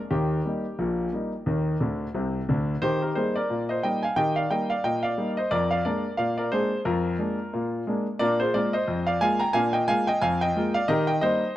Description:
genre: ragtime piano.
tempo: 89 BPM.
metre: 2/4.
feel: swing 58% on 16ths.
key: Eb major.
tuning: A4 = 440 Hz.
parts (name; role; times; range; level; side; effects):
clear concert grand piano; solo; 0.1-11.5 s; Bb1 to Bb5; -23 LUFS; equal; tape echo.
room: light reverb.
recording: dry, close 1970s-style studio recording.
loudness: -23 LUFS.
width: side -14 dB against mid.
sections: 0.0-2.8 A section; 2.8-11.6 A section.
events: grand piano fill 1.8-2.8.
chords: 0.1 Eb; 5.5 Bb7/F; 8.2 Bb7; 10.9 Eb.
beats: | 0.11 0.79 | 1.47 2.14 | 2.82 3.49 | 4.17 4.84 | 5.51 6.19 | 6.86 7.53 | 8.21 8.88 | 9.55 10.22 | 10.89.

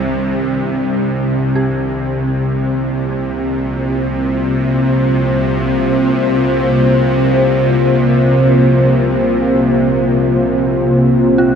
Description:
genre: dark ambient drone.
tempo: free time.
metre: none.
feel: none.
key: unclear.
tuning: A4 = 445 Hz.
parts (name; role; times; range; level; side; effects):
deep dark ambient pad; sustained chords; 0.0-11.6 s; C3 to C5; -14 LUFS; equal; chorus, built-in reverb.
dark detuned synth bell; arpeggios; 0.0-11.6 s; D4 to G4; -26 LUFS; right 2 dB; chorus, tape echo.
bowed-like drone; drone; 0.0-11.6 s; C2 to C3; -16 LUFS; equal; built-in reverb.
room: wet huge ambient reverb, RT60 8.1 s.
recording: dreamy mix soaked in reverb.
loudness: -12 LUFS.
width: side -7 dB against mid.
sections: 0.0-11.6 A section.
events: none.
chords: 0.0 Cm; 0.5 Bbsus2/C.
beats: free time.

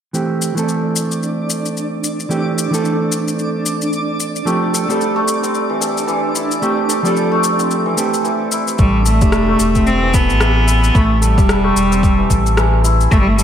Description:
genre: organic downtempo.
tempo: 111 BPM.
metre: 4/4.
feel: swing 59% on 16ths.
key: A minor.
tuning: A4 = 440 Hz.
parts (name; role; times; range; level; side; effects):
mellow electric guitar; accompaniment; 0.1-8.8 s; E3 to A4; -19 LUFS; right 3 dB; sidechain pumping, low-pass filter, digital delay.
electronic shaker and rim click; drums; 0.1-13.4 s; none; -22 LUFS; left 3 dB; overdrive, studio reverb, gated reverb.
twinkling granular texture; texture; 0.7-8.8 s; D4 to D5; -25 LUFS; right 2 dB; built-in reverb.
santur; arpeggios; 4.5-13.4 s; E3 to A4; -18 LUFS; left 1 dB; low-pass filter, digital delay.
clear cello; melody; 8.8-13.4 s; G3 to C4; -16 LUFS; right 1 dB; digital delay.
warm sub bass; bass; 8.8-13.4 s; E1 to A1; -16 LUFS; equal; none.
electronic kick drum; drums; 8.8-13.2 s; none; -16 LUFS; equal; overdrive, studio reverb.
room: moderate plate reverb, RT60 1.8 s, digital ambience.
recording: bright 1980s-style digital production.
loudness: -13 LUFS.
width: side -9 dB against mid.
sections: 0.1-8.8 A section; 8.8-13.4 B section.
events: filter sweep on clean electric guitar 0.1-8.8; filter sweep on santur 8.8-13.4.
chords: 0.1 Am7; 4.5 G9sus4; 8.8 Am7.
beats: | 0.14 0.68 1.22 1.76 | 2.31 2.85 3.39 3.93 | 4.47 5.01 5.55 6.09 | 6.63 7.17 7.71 8.25 | 8.79 9.33 9.87 10.41 | 10.95 11.49 12.03 12.57 | 13.12.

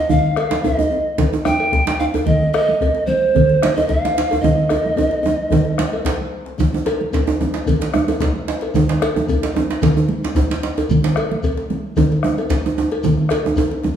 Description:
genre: west african traditional, West African drum ensemble.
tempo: 111 BPM.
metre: 4/4.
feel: straight.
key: Eb major pentatonic.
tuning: A4 = 440 Hz.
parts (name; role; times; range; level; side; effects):
reedy pan flute; melody; 0.0-6.0 s; C5 to G5; -18 LUFS; right 2 dB; none.
bombo; percussion; 0.1-13.9 s; none; -24 LUFS; left 2 dB; none.
congas; percussion; 0.1-14.0 s; none; -21 LUFS; right 1 dB; none.
djembe; percussion; 0.1-14.0 s; none; -26 LUFS; left 3 dB; none.
djembe; percussion; 0.1-14.0 s; none; -21 LUFS; right 4 dB; none.
cowbell; percussion; 0.4-13.7 s; none; -26 LUFS; left 3 dB; none.
shekere; percussion; 6.6-13.7 s; none; -33 LUFS; left 2 dB; none.
room: wet recital hall reverb, RT60 1.5 s.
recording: studio reverb.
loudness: -15 LUFS.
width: side -9 dB against mid.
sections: 0.0-6.6 A section; 6.6-14.0 B section.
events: drum fill 4.4-6.6.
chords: none.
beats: | 0.10 0.64 1.18 1.73 | 2.27 2.81 3.35 3.90 | 4.44 4.98 5.52 6.06 | 6.60 7.14 7.67 8.21 | 8.75 9.29 9.82 10.36 | 10.90 11.43 11.97 12.50 | 13.03 13.57.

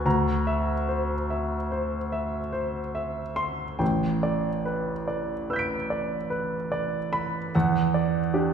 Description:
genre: classical, impressionist solo piano.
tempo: 48 BPM (dotted quarters).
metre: 9/8.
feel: rubato.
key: unclear.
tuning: A4 = 440 Hz.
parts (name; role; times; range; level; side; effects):
clear grand piano; solo; 0.0-8.5 s; A1 to D7; -24 LUFS; right 1 dB; none.
room: wet recital hall reverb, RT60 1.6 s.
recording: heard from further back in the room.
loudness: -25 LUFS.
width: side -7 dB against mid.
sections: 0.0-8.5 A section.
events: none.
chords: 0.1 C9/D; 3.8 A9sus4; 7.5 Em9.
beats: | 0.05 1.31 2.55 | 3.81 5.08 6.31 | 7.55.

